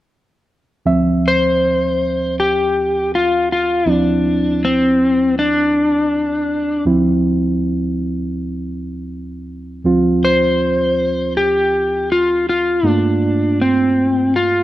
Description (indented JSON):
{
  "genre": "blues",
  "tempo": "80 BPM",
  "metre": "4/4",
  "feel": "swing 55% on 16ths",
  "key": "D minor",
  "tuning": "A4 = 441 Hz",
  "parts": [
    { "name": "reed electric piano", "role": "accompaniment", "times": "0.9-14.6 s", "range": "D2 to E5", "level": "-18 LUFS", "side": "right 2 dB", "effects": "none" },
    { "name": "electric slide guitar", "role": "melody", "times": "1.3-14.6 s", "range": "C4 to C5", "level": "-15 LUFS", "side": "left 1 dB", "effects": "none" }
  ],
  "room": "light reverb, digital ambience",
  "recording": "none",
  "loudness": "-14 LUFS",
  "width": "side -14 dB against mid",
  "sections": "0.9-14.6 A section",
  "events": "none",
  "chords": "0.9 Dm7; 12.8 Gm7",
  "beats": "| 0.87 1.62 2.37 3.12 | 3.87 4.62 5.37 6.12 | 6.86 7.61 8.36 9.11 | 9.86 10.61 11.35 12.10 | 12.85 13.60 14.34"
}